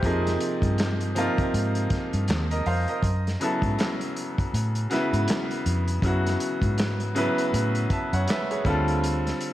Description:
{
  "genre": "R&B, neo-soul",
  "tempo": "80 BPM",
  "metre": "4/4",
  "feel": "swing 59% on 16ths",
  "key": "F# minor",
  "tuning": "A4 = 440 Hz",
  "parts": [
    { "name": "bright upright piano", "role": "accompaniment", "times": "0.0-9.5 s", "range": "C3 to A5", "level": "-26 LUFS", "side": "equal", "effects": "none" },
    { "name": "vintage muted fingered electric bass", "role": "bass", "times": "0.0-9.3 s", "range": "D2 to A2", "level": "-26 LUFS", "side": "equal", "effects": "none" },
    { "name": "warm soul drum kit", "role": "drums", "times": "0.0-9.5 s", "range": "handclaps, hi-hat, kick drum, snare drum", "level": "-29 LUFS", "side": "equal", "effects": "none" }
  ],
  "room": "moderate lush hall reverb, RT60 1.8 s",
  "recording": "big arena sound, vinyl crackle",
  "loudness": "-22 LUFS",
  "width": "side -14 dB against mid",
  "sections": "0.0-9.5 A section",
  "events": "none",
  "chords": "0.0 Fm11; 3.0 F#m11; 8.7 Dm11",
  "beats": "| 0.03 0.78 1.53 2.28 | 3.03 3.78 4.53 5.28 | 6.03 6.78 7.53 8.28 | 9.03"
}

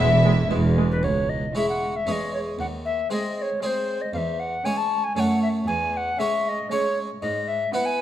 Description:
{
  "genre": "classical, baroque-style concerto movement with solo episodes",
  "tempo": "116 BPM",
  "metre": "3/4",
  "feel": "straight",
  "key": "C# minor",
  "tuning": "A4 = 440 Hz",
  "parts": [
    { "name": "alto recorder", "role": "melody", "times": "0.0-8.0 s", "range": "B4 to A5", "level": "-25 LUFS", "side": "left 2 dB", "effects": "none" },
    { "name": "rich chamber violin section", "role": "melody", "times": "0.0-8.0 s", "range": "G#4 to E5", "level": "-34 LUFS", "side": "right 2 dB", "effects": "none" },
    { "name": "rich chamber violin section", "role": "second line", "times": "0.0-8.0 s", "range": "B#3 to E4", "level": "-37 LUFS", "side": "left 2 dB", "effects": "none" },
    { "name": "harpsichord", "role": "accompaniment", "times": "0.0-8.0 s", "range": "C#2 to C#5", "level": "-27 LUFS", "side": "right 1 dB", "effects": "none" },
    { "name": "warm studio viola section", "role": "accompaniment", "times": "0.0-8.0 s", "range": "G#3 to B3", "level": "-31 LUFS", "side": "right 2 dB", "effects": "none" },
    { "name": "rich studio double bass section", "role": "bass", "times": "0.0-1.0 s", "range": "E1", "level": "-23 LUFS", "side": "right 3 dB", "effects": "none" },
    { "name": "warm chamber cello section", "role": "bass", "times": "0.0-7.6 s", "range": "C#2 to G#2", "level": "-27 LUFS", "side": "right 2 dB", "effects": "none" }
  ],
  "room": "moderate recital hall reverb, RT60 1.7 s",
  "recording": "none",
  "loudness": "-21 LUFS",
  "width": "side -11 dB against mid",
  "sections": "0.0-1.0 A section; 1.0-8.0 B section",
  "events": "none",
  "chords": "0.0 E; 1.0 C#m; 2.1 C#m/E; 2.6 G#/D#; 4.1 C#m/E; 5.2 F#m; 5.7 C#m/E; 7.2 E/G#",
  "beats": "0.51 | 1.03 1.55 2.07 | 2.58 3.10 3.62 | 4.13 4.65 5.16 | 5.68 6.19 6.71 | 7.22 7.73"
}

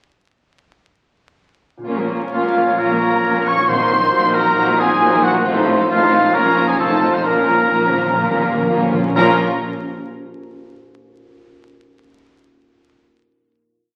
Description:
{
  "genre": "classical, dramatic, fast romantic movement for symphony orchestra",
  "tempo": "124-138 BPM",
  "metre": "4/4",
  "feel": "rubato",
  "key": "Bb minor",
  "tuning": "A4 = 440 Hz",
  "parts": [
    { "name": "concert harp", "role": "arpeggios", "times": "1.8-9.4 s", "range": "F2 to F5", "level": "-35 LUFS", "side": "equal", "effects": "none" },
    { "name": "warm symphonic violin section", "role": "second line", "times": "1.9-9.4 s", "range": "Bb3 to Bb4", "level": "-26 LUFS", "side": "equal", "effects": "none" },
    { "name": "warm symphonic viola section", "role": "accompaniment", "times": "1.9-9.4 s", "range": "Eb3 to Db4", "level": "-27 LUFS", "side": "equal", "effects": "none" },
    { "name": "mellow French horn section", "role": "sustained chords", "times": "1.9-9.3 s", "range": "F3 to F4", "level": "-26 LUFS", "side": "equal", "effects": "none" },
    { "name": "dark trumpet section", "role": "stabs", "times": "1.9-9.3 s", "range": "Bb4 to Db5", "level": "-26 LUFS", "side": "equal", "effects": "none" },
    { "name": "rich chamber double bass section", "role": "bass", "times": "1.9-9.4 s", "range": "F1 to Bb1", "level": "-31 LUFS", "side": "equal", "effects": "none" },
    { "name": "rich symphonic cello section", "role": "bass", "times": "1.9-9.4 s", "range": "F2 to Bb2", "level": "-26 LUFS", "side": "equal", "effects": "none" },
    { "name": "warm symphonic violin section", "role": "melody", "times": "2.3-9.4 s", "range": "F5 to Db6", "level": "-26 LUFS", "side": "equal", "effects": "none" },
    { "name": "mellow large flute ensemble", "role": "second line", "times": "2.3-9.4 s", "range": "F5 to Db6", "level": "-24 LUFS", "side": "equal", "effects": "none" },
    { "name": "warm oboe", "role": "second line", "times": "2.3-9.4 s", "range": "F4 to Db5", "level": "-22 LUFS", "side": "equal", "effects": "none" },
    { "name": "timpani", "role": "percussion", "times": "3.7-4.3, 7.3-9.4 s", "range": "Bb2", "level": "-29 LUFS", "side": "equal", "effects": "none" }
  ],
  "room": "wet scoring stage reverb, RT60 1.5 s",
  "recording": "very old 78 rpm record, vinyl crackle",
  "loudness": "-16 LUFS",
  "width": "mono",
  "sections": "1.9-9.2 A section; 9.2-11.0 final chord",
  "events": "timpani fill 7.3-9.2",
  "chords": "1.9 Bbm; 3.7 Cm7b5/Bb; 5.5 F7/A; 6.3 Bbm; 6.8 F7; 7.3 Bbm",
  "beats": "| 1.88 2.33 2.80 3.25 | 3.69 4.14 4.57 5.01 | 5.46 5.90 6.34 6.79 | 7.25 7.73 8.21 8.68 | 9.16"
}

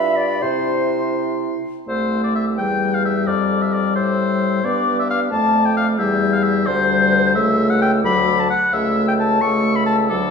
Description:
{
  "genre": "quick classical-period movement for wind quintet",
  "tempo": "87 BPM (dotted quarters)",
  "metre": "6/8",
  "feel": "rubato",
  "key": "C major",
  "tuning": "A4 = 439 Hz",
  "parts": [
    { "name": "concert flute", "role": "melody", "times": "0.0-10.3 s", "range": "C5 to G6", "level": "-25 LUFS", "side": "left 6 dB", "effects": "none" },
    { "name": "warm oboe", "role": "second line", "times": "0.0-10.3 s", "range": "A4 to C#6", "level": "-20 LUFS", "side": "left 3 dB", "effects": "none" },
    { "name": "mellow clarinet", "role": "accompaniment", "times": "0.0-10.3 s", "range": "A4 to E5", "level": "-27 LUFS", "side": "right 3 dB", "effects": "none" },
    { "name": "warm French horn", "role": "accompaniment", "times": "0.0-10.3 s", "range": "F#3 to F4", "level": "-20 LUFS", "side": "left 1 dB", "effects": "none" },
    { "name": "mellow bassoon", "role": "bass", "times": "0.0-10.3 s", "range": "C2 to C3", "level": "-24 LUFS", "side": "equal", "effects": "none" }
  ],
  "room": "wet recital hall reverb, RT60 1.6 s",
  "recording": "heard from further back in the room",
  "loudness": "-16 LUFS",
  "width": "side -6 dB against mid",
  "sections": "0.0-1.9 A section; 1.9-10.3 B section",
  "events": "none",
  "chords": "0.4 C; 2.6 Em; 3.3 F; 4.6 G; 5.3 F6; 6.0 C/E; 7.4 A/C#; 8.0 D; 8.7 A/C#",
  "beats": "| 0.42 1.15 | 1.88 2.58 | 3.27 3.96 | 4.64 5.32 | 5.99 6.67 | 7.36 8.04 | 8.73 9.42 | 10.10"
}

